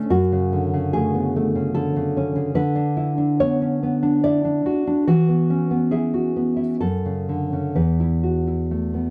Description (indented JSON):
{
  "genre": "romantic piece for solo classical guitar",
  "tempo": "62-74 BPM",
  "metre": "3/4",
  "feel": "rubato",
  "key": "unclear",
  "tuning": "A4 = 439 Hz",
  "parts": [
    { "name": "nylon-string guitar", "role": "solo", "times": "0.0-9.1 s", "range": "E2 to D5", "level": "-21 LUFS", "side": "equal", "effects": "none" }
  ],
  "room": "light reverb",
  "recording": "close, detailed microphones",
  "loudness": "-21 LUFS",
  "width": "mono",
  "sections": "0.0-9.1 A section",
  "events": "none",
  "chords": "0.1 F#m; 2.6 Bm/D; 5.1 E; 6.8 F#m; 7.8 Esus4"
}